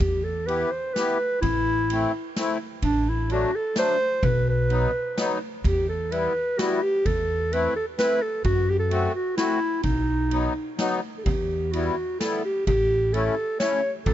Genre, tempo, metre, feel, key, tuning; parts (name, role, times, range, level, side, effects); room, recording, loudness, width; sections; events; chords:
alpine folk, alpine dance band; 128 BPM; 3/4; straight; E minor; A4 = 440 Hz
dark clarinet; melody; 0.0-14.1 s; D4 to C#5; -24 LUFS; right 1 dB
upright bass; bass; 0.0-14.1 s; A1 to F#2; -26 LUFS; equal
street-band drum kit; drums; 0.0-14.1 s; kick drum, ride cymbal, snare drum; -31 LUFS; equal
accordion; accompaniment; 0.5-13.8 s; F#3 to G4; -29 LUFS; left 4 dB; light tremolo tuning
little or no reverb; nothing above 7.8 kHz; -22 LUFS; side -12 dB against mid
0.0-14.1 A section
0.0 Em; 1.4 Am; 2.8 D/A; 4.2 B; 5.6 Em; 7.1 Am/E; 8.4 F#dim; 9.8 B; 11.3 Emadd9; 12.7 A7